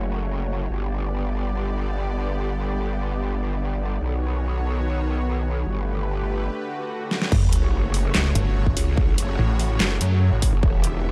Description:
heavy wobble dubstep; 145 BPM; 4/4; half-time; F# phrygian; A4 = 440 Hz
supersaw pad; sustained chords; 0.0-11.1 s; C#3 to E5; -32 LUFS; equal; sidechain pumping
growl bass; bass; 0.0-11.1 s; E1 to C#2; -27 LUFS; equal; chorus, overdrive
swell and sub drop; sound effects; 6.7-9.0 s; -29 LUFS; equal
dubstep drum kit; drums; 7.1-10.9 s; crash cymbal, handclaps, hi-hat, snare drum; -27 LUFS; equal; overdrive
electronic kick drum; drums; 7.3-10.7 s; -24 LUFS; equal; overdrive
snarling distorted saw bass; bass; 8.4-10.5 s; G1 to F#2; -22 LUFS; equal; overdrive
little or no reverb; dark, warm production; -24 LUFS; mono
0.0-7.3 A section; 7.3-11.1 B section
swell 6.7-7.3; drum fill 7.1; drop 7.3-11.1; impact 7.3-9.0
0.0 F#m; 0.7 G; 4.0 Badd9; 5.7 Gadd9; 7.3 F#m

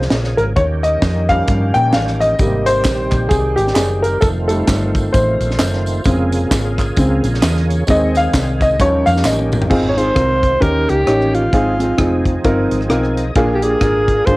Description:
uptempo gospel; 131 BPM; 4/4; swing 59% on 8ths; Ab major; A4 = 440 Hz
overdriven tonewheel organ; sustained chords; 0.0-14.4 s; Db3 to Ab5; -24 LUFS; right 1 dB; slow rotary speaker, chorus vibrato, cassette tape, plate reverb
hollow-body short-scale fingered electric bass; bass; 0.0-14.4 s; F1 to Bb2; -19 LUFS; equal
tight funk drum kit; drums; 0.0-14.4 s; crash cymbal, hi-hat, kick drum, rim click, snare drum, toms; -19 LUFS; equal; cassette tape
clear grand piano; accompaniment; 0.4-14.4 s; Ab2 to G5; -17 LUFS; equal; cassette tape, plate reverb
tambourine and handclaps; percussion; 2.4-9.6 s; -29 LUFS; right 2 dB
warm alto saxophone; melody; 9.9-14.4 s; F4 to Db5; -16 LUFS; equal; cassette tape, plate reverb
light reverb; home recording on cassette; -13 LUFS; side -20 dB against mid
0.0-9.7 A section; 9.7-14.4 B section
grand piano solo 0.0-9.7; drum fill 9.2-9.7; tonewheel organ fill 12.7-13.4
0.0 Bbm7; 0.6 Eb7; 2.4 Abmaj7; 4.2 F7; 6.1 Bbm7/F; 7.9 Ab/Eb; 8.8 Eb7; 9.7 Ab6; 10.6 Eb7; 11.5 Fm7; 13.4 Bb7

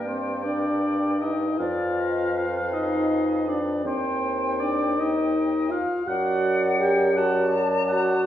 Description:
classical, slow romantic movement for wind quintet; 54 BPM (dotted quarters); 6/8; rubato; A4 = 445 Hz
silver concert flute; melody; 0.0-8.3 s; D5 to A5; -32 LUFS; left 5 dB
mellow oboe; second line; 0.0-8.3 s; C5 to G5; -30 LUFS; equal
mellow French horn; accompaniment; 0.0-8.3 s; C4 to G4; -25 LUFS; equal
mellow clarinet; accompaniment; 0.0-8.3 s; Bb4 to D5; -32 LUFS; equal
warm bassoon; bass; 0.0-8.3 s; Eb2 to G2; -28 LUFS; right 1 dB
wet recital hall reverb, RT60 1.4 s; heard from further back in the room; -21 LUFS; side -11 dB against mid
0.0-8.3 A section
0.0 Gm; 1.6 Bdim/F; 3.8 Cm/Eb; 6.1 D/F#

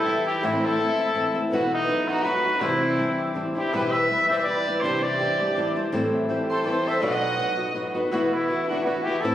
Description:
mexican folk, mariachi; 164 BPM; 3/4; swing 55% on 8ths, rubato; E minor; A4 = 440 Hz
clear trumpet; melody; 0.0-9.3 s; D#4 to F#5; -25 LUFS; equal
warm symphonic violin section; second line; 0.0-9.3 s; B3 to D#5; -29 LUFS; right 1 dB
flamenco guitar; accompaniment; 0.0-9.3 s; E2 to F#4; -27 LUFS; left 1 dB
Celtic harp; arpeggios; 0.0-9.3 s; E4 to D#6; -30 LUFS; left 2 dB
muted studio violin section; sustained chords; 3.7-9.3 s; G3 to E5; -37 LUFS; right 1 dB
wet concert hall reverb, RT60 1.9 s; recorded on a phone in the room, studio reverb, compression; -21 LUFS; side -12 dB against mid
0.0-9.3 A section
0.4 Am; 1.5 Em/B; 1.9 B; 2.6 Cadd9; 3.7 Em; 4.8 Cadd9; 5.9 Am7; 7.0 B; 8.1 Esus2

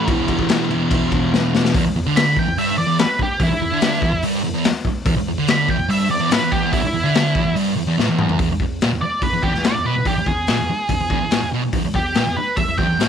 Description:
garage rock duo or trio; 144 BPM; 4/4; straight; A4 = 440 Hz
octave-fuzz lead guitar; melody; 0.0-13.1 s; E4 to B5; -21 LUFS; right 1 dB; distortion, tape echo
thick fuzz guitar; riff; 0.0-13.1 s; E2 to E3; -20 LUFS; right 1 dB; distortion
raw garage drum kit; drums; 0.1-13.1 s; crash cymbal, hi-hat, kick drum, snare drum, toms; -21 LUFS; left 2 dB
small room ambience; 1960s-style stereo; -16 LUFS; side -8 dB against mid
0.0-1.7 A section; 1.7-8.4 B section; 8.4-13.1 C section
drum fill 1.3-1.7, 8.0-8.4; lead electric guitar solo 1.7-8.4
0.1 E5; 1.7 E7(no3); 8.4 E

